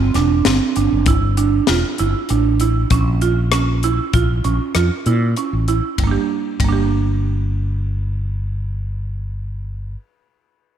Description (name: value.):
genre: progressive instrumental, band music in an uneven meter.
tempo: 98 BPM.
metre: 5/4.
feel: straight.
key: G dorian.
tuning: A4 = 439 Hz.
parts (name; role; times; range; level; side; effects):
buzzing marimba with hard mallets; arpeggios; 0.0-10.1 s; G3 to G4; -20 LUFS; right 9 dB; none.
mellow fretless electric bass; bass; 0.0-9.9 s; E1 to Bb2; -18 LUFS; equal; none.
crisp fusion drum kit; drums; 0.1-6.8 s; hi-hat, kick drum, ride cymbal, rim click, snare drum; -20 LUFS; left 4 dB; none.
room: moderate echo chamber reverb, RT60 2.1 s.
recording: 1960s-style stereo.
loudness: -16 LUFS.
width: side -9 dB against mid.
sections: 0.0-6.0 A section; 6.0-9.1 B section.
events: none.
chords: 0.0 G5; 2.9 Bbm; 6.0 Gm.